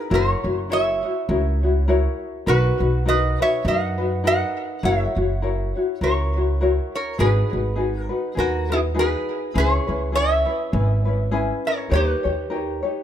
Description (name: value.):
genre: Hawaiian.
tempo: 102 BPM.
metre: 4/4.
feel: swing 57% on 8ths.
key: unclear.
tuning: A4 = 440 Hz.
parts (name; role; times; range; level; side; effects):
metal-body resonator slide guitar; melody; 0.0-13.0 s; E4 to F#5; -24 LUFS; right 2 dB; tape echo.
tenor ukulele; accompaniment; 0.0-13.0 s; C#4 to C#5; -24 LUFS; left 3 dB; none.
upright bass; bass; 0.1-12.8 s; F#1 to F#2; -22 LUFS; equal; none.
room: little or no reverb.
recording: close, detailed microphones.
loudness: -19 LUFS.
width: side -10 dB against mid.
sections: 0.0-13.0 A section.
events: none.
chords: 0.1 F#7; 2.5 Bmaj7; 4.8 F#7; 7.2 G#m7; 9.6 C#m7; 11.9 D#7.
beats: | 0.11 0.70 1.29 1.88 | 2.47 3.06 3.65 4.24 | 4.83 5.42 6.01 6.60 | 7.19 7.78 8.37 8.96 | 9.55 10.14 10.73 11.32 | 11.91 12.50.